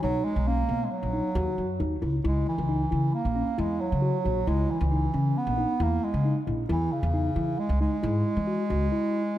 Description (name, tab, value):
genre	progressive instrumental, progressive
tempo	135 BPM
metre	5/4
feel	straight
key	C# dorian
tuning	A4 = 439 Hz
part	warm bass clarinet	melody	0.0-9.4 s	C#3 to B3	-29 LUFS	right 2 dB	tape echo
part	mellow tine electric piano	arpeggios	0.0-9.2 s	B3 to F#4	-31 LUFS	left 1 dB	medium stereo tremolo, tape echo
part	upright bass	bass	0.0-8.9 s	A#1 to E3	-27 LUFS	equal	none
room	moderate lush hall reverb, RT60 1.7 s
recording	dreamy mix soaked in reverb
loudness	-24 LUFS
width	side -13 dB against mid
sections	0.0-9.4 A section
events	none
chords	0.0 B; 2.2 C#madd9; 6.7 E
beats	| 0.03 0.47 0.91 1.36 1.80 | 2.25 2.69 3.14 3.58 4.03 | 4.47 4.92 5.36 5.81 6.25 | 6.70 7.14 7.59 8.03 8.48 | 8.92 9.37